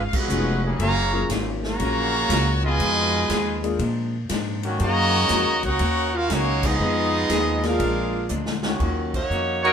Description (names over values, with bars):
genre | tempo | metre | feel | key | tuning
jazz, big band swing | 120 BPM | 4/4 | swing 68% on 8ths | Eb minor | A4 = 440 Hz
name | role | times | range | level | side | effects
brilliant trumpet section | melody | 0.0-8.3 s | Bb3 to Bb5 | -23 LUFS | equal | none
clear trombone section | second line | 0.0-8.3 s | Cb3 to Gb4 | -27 LUFS | right 2 dB | none
archtop guitar, miked and amplified | accompaniment | 0.0-9.7 s | Bb2 to Ab4 | -31 LUFS | left 3 dB | none
upright bass | bass | 0.0-9.7 s | F1 to Bb2 | -26 LUFS | equal | none
swinging big-band drum kit | drums | 0.1-9.7 s | crash cymbal, hi-hat, kick drum, ride cymbal, snare drum | -30 LUFS | equal | none
warm grand piano | accompaniment | 0.3-3.8, 6.8-9.1 s | Eb3 to Bb4 | -29 LUFS | left 4 dB | none
brilliant trombone section | sustained chords | 0.6-9.3 s | Db3 to Ab4 | -32 LUFS | left 1 dB | none
warm saxophone section | melody | 9.2-9.7 s | Bb3 to Db5 | -24 LUFS | right 2 dB | none
brilliant trumpet section | stabs | 9.6-9.7 s | Eb4 to Db5 | -15 LUFS | right 2 dB | none
room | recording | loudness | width
light reverb | minimal, uncompressed stereo recording | -20 LUFS | side -7 dB against mid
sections
0.0-8.8 A section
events
band accent 0.0, 6.5, 9.1; drum fill 8.3-8.8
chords
0.0 Db7; 0.8 Gbmaj7; 2.8 Fm7b5; 3.8 Bb7; 4.8 Ebm7; 6.8 Fm7b5; 7.8 Bb7; 8.8 Ebm7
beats
0.29 | 0.79 1.29 1.79 2.29 | 2.79 3.29 3.79 4.30 | 4.80 5.30 5.80 6.30 | 6.80 7.30 7.80 8.30 | 8.80 9.30